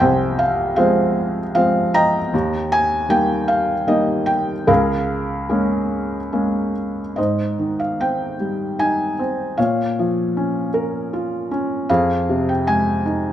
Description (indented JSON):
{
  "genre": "classical, lyrical solo piano",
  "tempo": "76 BPM",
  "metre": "3/4",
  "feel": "rubato",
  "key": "unclear",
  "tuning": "A4 = 440 Hz",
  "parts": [
    { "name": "felt-muted upright piano", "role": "solo", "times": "0.0-13.3 s", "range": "C2 to Bb5", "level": "-17 LUFS", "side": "equal", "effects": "none" }
  ],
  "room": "moderate recital hall reverb, RT60 1.6 s",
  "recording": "none",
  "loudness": "-17 LUFS",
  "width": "side -11 dB against mid",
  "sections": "0.0-7.2 A section; 7.2-13.3 B section",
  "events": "none",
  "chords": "0.0 Fm; 2.3 Eb; 4.7 Bbm7/Db; 7.2 Abmaj7; 9.6 Bbm; 11.9 Fm7"
}